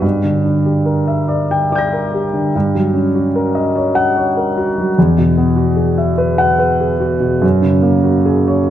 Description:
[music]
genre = classical, impressionist solo piano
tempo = 73 BPM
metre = 3/4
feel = rubato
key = unclear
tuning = A4 = 445 Hz
[part]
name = clear concert grand piano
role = solo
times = 0.0-8.7 s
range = E2 to Bb6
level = -12 LUFS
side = equal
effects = none
[sound]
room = wet concert hall reverb, RT60 2.4 s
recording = none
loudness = -12 LUFS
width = side -11 dB against mid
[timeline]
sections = 0.0-8.7 A section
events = none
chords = 0.0 Gm6; 2.5 Ebm7/G; 5.0 Eadd9; 7.4 Gbadd9

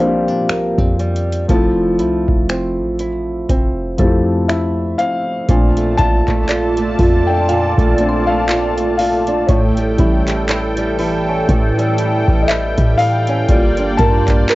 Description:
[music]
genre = contemporary R&B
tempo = 60 BPM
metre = 4/4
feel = swing 58% on 16ths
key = unclear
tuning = A4 = 440 Hz
[part]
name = felt-muted upright piano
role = accompaniment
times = 0.0-14.6 s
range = E3 to A5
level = -19 LUFS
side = left 2 dB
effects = cassette tape
[part]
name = flamenco guitar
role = arpeggios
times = 0.0-14.6 s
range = A2 to Bb4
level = -19 LUFS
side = right 2 dB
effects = cassette tape
[part]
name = warm 808-style bass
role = bass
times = 0.0-14.5 s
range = F1 to Bb2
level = -20 LUFS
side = equal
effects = none
[part]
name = booming analog drum machine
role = drums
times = 0.5-14.6 s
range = finger snaps, handclaps, hi-hat, kick drum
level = -16 LUFS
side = equal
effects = none
[part]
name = warm analog pad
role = sustained chords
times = 5.5-14.6 s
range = E3 to A5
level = -20 LUFS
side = equal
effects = chorus, phaser, cassette tape
[part]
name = mallet-like synth pluck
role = texture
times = 6.5-10.5 s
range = D5 to C6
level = -28 LUFS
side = equal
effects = none
[sound]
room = light reverb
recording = home recording on cassette, nothing above 7.6 kHz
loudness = -13 LUFS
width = side -18 dB against mid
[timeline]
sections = 0.0-5.5 A section; 5.5-14.6 B section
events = felt piano solo 5.5-14.6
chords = 0.0 Bb69; 1.5 Fmaj7; 5.5 Bbmaj7; 9.5 A7; 13.5 Gm7

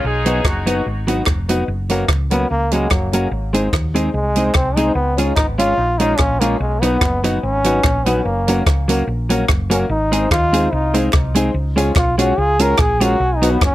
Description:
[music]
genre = ska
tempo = 146 BPM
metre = 4/4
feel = swing 54% on 8ths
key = F# major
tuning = A4 = 440 Hz
[part]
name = clear horn section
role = melody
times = 0.0-0.9 s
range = D#4 to G#4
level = -24 LUFS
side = equal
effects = tape echo
[part]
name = hollow-body short-scale fingered electric bass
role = bass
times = 0.0-13.7 s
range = E#1 to D#2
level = -21 LUFS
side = equal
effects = none
[part]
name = warm upright piano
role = stabs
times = 0.2-13.6 s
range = A#3 to C#5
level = -24 LUFS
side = left 4 dB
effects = tape echo
[part]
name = semi-hollow electric guitar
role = accompaniment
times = 0.3-13.6 s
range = F#3 to G#4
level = -19 LUFS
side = right 2 dB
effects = none
[part]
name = compact cocktail drum kit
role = drums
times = 0.3-13.7 s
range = hi-hat, kick drum, rim click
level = -18 LUFS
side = equal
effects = none
[part]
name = group handclap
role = percussion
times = 0.5-13.7 s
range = none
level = -29 LUFS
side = right 4 dB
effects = none
[part]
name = bright trombone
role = melody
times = 2.3-13.7 s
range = F#3 to A#4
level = -19 LUFS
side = equal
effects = tape echo
[sound]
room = light reverb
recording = none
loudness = -14 LUFS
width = side -15 dB against mid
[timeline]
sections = 0.0-1.7 A section; 1.7-13.7 B section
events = trombone solo 1.7-13.7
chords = 0.0 B; 1.7 F#; 3.3 G#; 5.0 C#; 6.6 B; 8.3 F#; 9.9 G#; 11.6 C#; 13.2 B

